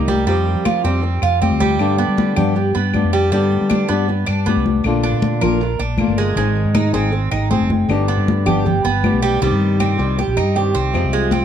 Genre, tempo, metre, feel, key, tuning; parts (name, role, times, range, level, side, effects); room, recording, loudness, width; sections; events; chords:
latin, Cuban son and guajira; 158 BPM; 4/4; straight; C minor; A4 = 440 Hz
flamenco guitar; accompaniment; 0.0-11.4 s; C3 to Ab4; -22 LUFS; left 4 dB
Cuban tres; arpeggios; 0.0-11.4 s; G3 to Bb4; -20 LUFS; right 5 dB; tape echo
mellow fretless electric bass; bass; 0.0-11.4 s; F#1 to G3; -19 LUFS; equal
congas; percussion; 0.1-11.4 s; -21 LUFS; left 3 dB
claves; percussion; 0.7-11.1 s; -31 LUFS; left 8 dB
light reverb; dark, warm production; -15 LUFS; side -9 dB against mid
0.0-9.4 A section; 9.4-11.4 B section
0.3 Fsus2; 1.8 G; 4.8 Bb; 6.4 Ab; 7.9 G; 9.4 Cm; 10.9 Fm